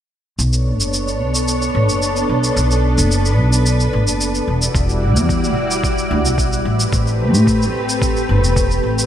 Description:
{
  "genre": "sunset chillout",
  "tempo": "110 BPM",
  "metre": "4/4",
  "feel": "straight",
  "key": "B phrygian",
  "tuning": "A4 = 440 Hz",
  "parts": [
    { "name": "soft string machine", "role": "sustained chords", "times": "0.4-9.1 s", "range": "G3 to D5", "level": "-19 LUFS", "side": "equal", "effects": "ensemble chorus" },
    { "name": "upright bass", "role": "bass", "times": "0.4-9.0 s", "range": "E1 to A2", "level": "-17 LUFS", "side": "equal", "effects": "none" },
    { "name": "cabasa", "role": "drums", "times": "0.4-9.1 s", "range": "none", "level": "-24 LUFS", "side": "equal", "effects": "overdrive, small room reverb" },
    { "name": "electronic kick drum", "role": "drums", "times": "4.7-8.7 s", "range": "none", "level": "-20 LUFS", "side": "equal", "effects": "overdrive, small room reverb" }
  ],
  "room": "moderate lush hall reverb, RT60 1.8 s, digital ambience",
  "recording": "bright 1980s-style digital production",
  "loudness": "-14 LUFS",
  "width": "side -10 dB against mid",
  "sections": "0.4-9.1 A section",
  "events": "none",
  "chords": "0.4 Bm9; 4.5 Em9; 6.7 Am9"
}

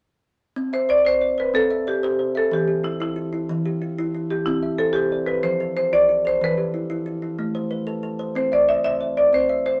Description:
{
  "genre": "southern african traditional, mbira-style interlocking cycle",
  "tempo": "123 BPM (dotted quarters)",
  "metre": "12/8",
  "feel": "straight",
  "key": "C major",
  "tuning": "A4 = 439 Hz",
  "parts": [
    { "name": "kalimba", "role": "arpeggios", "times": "0.6-9.8 s", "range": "E3 to E5", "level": "-29 LUFS", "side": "equal", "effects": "none" },
    { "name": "marimba with medium hard mallets", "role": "melody", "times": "0.7-9.8 s", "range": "E4 to E5", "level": "-22 LUFS", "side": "equal", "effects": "none" }
  ],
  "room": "wet club reverb, RT60 0.8 s",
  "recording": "none",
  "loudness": "-22 LUFS",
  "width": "mono",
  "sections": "0.6-9.8 A section",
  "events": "none",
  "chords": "0.6 C; 2.5 Em; 4.5 C; 5.4 F; 6.4 Em; 7.4 Am; 8.4 C"
}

